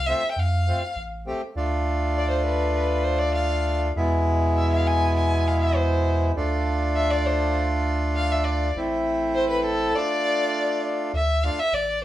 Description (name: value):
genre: klezmer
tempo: 100 BPM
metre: 2/4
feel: straight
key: D dorian sharp4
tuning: A4 = 441 Hz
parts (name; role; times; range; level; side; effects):
- rich violin; melody; 0.0-12.0 s; A4 to G#5; -26 LUFS; left 1 dB; none
- warm sub bass; bass; 0.0-12.0 s; A1 to F2; -25 LUFS; equal; none
- accordion; accompaniment; 0.1-11.6 s; B2 to G4; -24 LUFS; equal; none
room: wet studio reverb, RT60 0.5 s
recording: heard from further back in the room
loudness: -21 LUFS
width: side -13 dB against mid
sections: 0.0-1.6 A section; 1.6-11.1 B section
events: none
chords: 0.0 F; 1.6 Dm; 4.0 E; 6.4 Dm; 8.8 Am; 9.9 Dm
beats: | 0.37 0.97 | 1.57 2.16 | 2.76 3.36 | 3.96 4.56 | 5.16 5.76 | 6.36 6.96 | 7.56 8.15 | 8.75 9.35 | 9.95 10.55 | 11.14 11.74